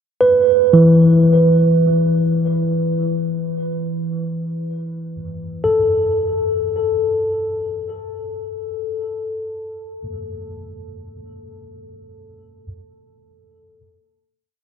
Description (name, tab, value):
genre	ambient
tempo	free time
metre	none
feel	none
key	unclear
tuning	A4 = 440 Hz
part	tine electric piano	solo	0.2-12.7 s	E3 to B4	-16 LUFS	moving between left 7 dB and right 2 dB	overdrive, auto-pan, diffuse ambient delay
room	wet huge ambient reverb, RT60 7.5 s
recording	none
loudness	-15 LUFS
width	side -7 dB against mid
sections	0.0-5.6 A section; 5.6-10.2 final note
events	none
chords	0.0 E5; 5.6 N.C.